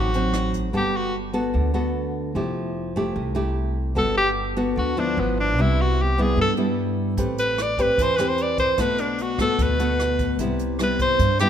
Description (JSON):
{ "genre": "bossa nova", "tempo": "149 BPM", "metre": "4/4", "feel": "straight", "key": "G major", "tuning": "A4 = 440 Hz", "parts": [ { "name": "breathy alto saxophone", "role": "melody", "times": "0.0-1.2, 4.0-11.5 s", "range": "B3 to D5", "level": "-23 LUFS", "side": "left 1 dB", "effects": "none" }, { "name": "nylon-string guitar", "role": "accompaniment", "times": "0.0-11.5 s", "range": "G2 to B4", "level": "-24 LUFS", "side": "equal", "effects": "none" }, { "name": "upright bass", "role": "bass", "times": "0.0-11.5 s", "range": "F1 to G2", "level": "-26 LUFS", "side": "equal", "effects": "none" }, { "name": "jazz brush drum kit", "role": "drums", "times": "0.1-0.6, 7.2-11.5 s", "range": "hi-hat, kick drum, rim click", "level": "-30 LUFS", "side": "equal", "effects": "none" } ], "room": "moderate scoring stage reverb, RT60 1.7 s", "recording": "none", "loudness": "-20 LUFS", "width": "side -9 dB against mid", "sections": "0.7-11.5 A section", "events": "alto saxophone solo 0.7-11.5", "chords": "0.0 D7b9 (rootless); 0.7 Gmaj9; 2.3 Fmaj9; 4.0 Gmaj9; 5.2 G6; 5.6 Cmaj7; 7.2 Am9; 8.8 Bm7; 10.4 Cmaj7", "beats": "0.34 | 0.74 1.14 1.54 1.95 | 2.35 2.75 3.15 3.56 | 3.96 4.36 4.76 5.17 | 5.57 5.97 6.37 6.78 | 7.18 7.58 7.98 8.39 | 8.79 9.19 9.59 9.99 | 10.40 10.80 11.20" }